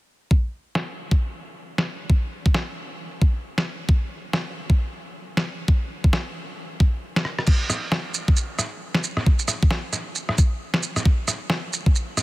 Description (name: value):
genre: future garage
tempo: 134 BPM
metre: 4/4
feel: swing 61% on 16ths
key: none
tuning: none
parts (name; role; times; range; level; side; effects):
- electronic kick drum; drums; 0.3-11.9 s; none; -18 LUFS; equal; overdrive, small room ambience
- lo-fi sampler-style drum kit; drums; 0.8-12.2 s; crash cymbal, rim click, shaker, snare drum; -26 LUFS; equal; low-pass filter on snare, small room ambience, low-pass filter on cymbals, low-pass filter on perc
room: little or no reverb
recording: dense, heavily limited modern master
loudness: -21 LUFS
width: side -19 dB against mid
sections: 0.3-7.5 A section; 7.5-12.2 B section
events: break 7.0-7.5; drum fill 7.3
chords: none